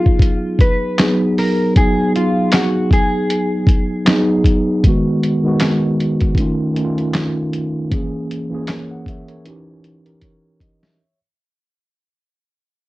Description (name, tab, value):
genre	lo-fi hip hop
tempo	78 BPM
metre	4/4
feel	swing 57% on 16ths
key	unclear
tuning	A4 = 439 Hz
part	mellow electric guitar	melody	0.0-4.4 s	E#4 to B4	-21 LUFS	equal	analog chorus, low-pass filter, cassette tape
part	mellow tine electric piano	accompaniment	0.0-11.2 s	D#3 to F#5	-17 LUFS	equal	medium stereo tremolo, low-pass filter, cassette tape
part	lo-fi sampler-style drum kit	drums	0.1-11.0 s	handclaps, hi-hat, kick drum, snare drum	-15 LUFS	equal	vintage 12-bit sampler grit, cassette tape
room	moderate studio ambience, RT60 0.5 s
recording	home recording on cassette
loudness	-14 LUFS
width	side -19 dB against mid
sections	0.0-4.8 A section; 4.8-11.0 B section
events	fade-out 4.8-11.0; drum fill 10.2-11.0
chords	0.0 G#m7; 6.4 F7b13; 7.9 A#m7b5; 9.4 D#7b9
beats	0.22 0.99 | 1.76 2.53 3.29 4.06 | 4.83 5.60 6.37 7.14 | 7.91 8.68 9.45 10.22